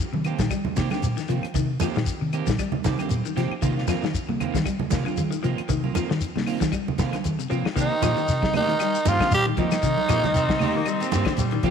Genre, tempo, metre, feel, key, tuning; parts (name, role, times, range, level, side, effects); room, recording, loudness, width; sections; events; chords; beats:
afrobeat; 116 BPM; 4/4; swing 56% on 16ths; C minor; A4 = 440 Hz
semi-hollow electric guitar; arpeggios; 0.0-11.7 s; C3 to G3; -30 LUFS; left 10 dB
vintage muted fingered electric bass; bass; 0.1-11.7 s; G2 to Bb3; -26 LUFS; equal
congas; percussion; 0.1-11.7 s; -30 LUFS; right 10 dB
warm soul drum kit; drums; 0.2-11.7 s; hi-hat, kick drum, snare drum, toms; -30 LUFS; left 3 dB
claves; percussion; 0.2-11.4 s; -40 LUFS; left 10 dB
electric guitar at the edge of break-up; stabs; 0.3-11.7 s; Eb3 to G4; -31 LUFS; right 10 dB; lush chorus
shekere; percussion; 0.3-11.7 s; -31 LUFS; left 3 dB
raspy tenor saxophone; melody; 7.8-11.1 s; Eb4 to G4; -23 LUFS; right 1 dB
trombone with plunger mute; second line; 7.8-11.1 s; Eb3 to G3; -32 LUFS; right 10 dB
raspy baritone saxophone; second line; 10.1-11.7 s; G3 to C4; -30 LUFS; left 10 dB
moderate echo chamber reverb, RT60 1.8 s, small room ambience; 1960s-style stereo with parts hard left and right; -21 LUFS; side -7 dB against mid
0.0-7.8 A section; 7.8-11.7 B section
drum fill 7.5
0.0 Cm7; 3.6 F7sus4/C; 7.8 Cm7
0.51 1.02 | 1.54 2.06 2.58 3.10 | 3.62 4.14 4.66 5.17 | 5.69 6.21 6.73 7.25 | 7.77 8.28 8.80 9.32 | 9.83 10.35 10.87 11.38